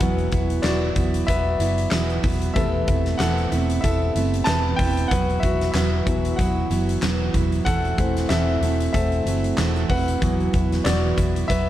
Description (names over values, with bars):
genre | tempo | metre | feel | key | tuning
piano-driven pop | 94 BPM | 4/4 | swing 56% on 16ths | unclear | A4 = 440 Hz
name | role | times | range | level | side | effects
warm grand piano | accompaniment | 0.0-11.7 s | C3 to A5 | -25 LUFS | left 2 dB | none
picked steel-string acoustic guitar | riff | 0.0-11.7 s | E2 to F#4 | -26 LUFS | right 6 dB | none
vintage muted fingered electric bass | bass | 0.0-11.7 s | E1 to F#1 | -24 LUFS | equal | none
huge arena drum kit | drums | 0.0-11.7 s | handclaps, hi-hat, kick drum, snare drum | -25 LUFS | equal | none
room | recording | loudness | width
light reverb | dark, warm production | -19 LUFS | side -13 dB against mid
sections
0.0-11.7 A section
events
grand piano solo 0.0-11.7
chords
0.0 Esus2; 2.6 Amadd9/E; 5.1 Esus2; 7.7 F#m7b5/E; 10.2 Esus2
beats
| 0.01 0.65 1.28 1.92 | 2.56 3.20 3.84 4.47 | 5.11 5.75 6.39 7.03 | 7.66 8.30 8.94 9.58 | 10.22 10.86 11.49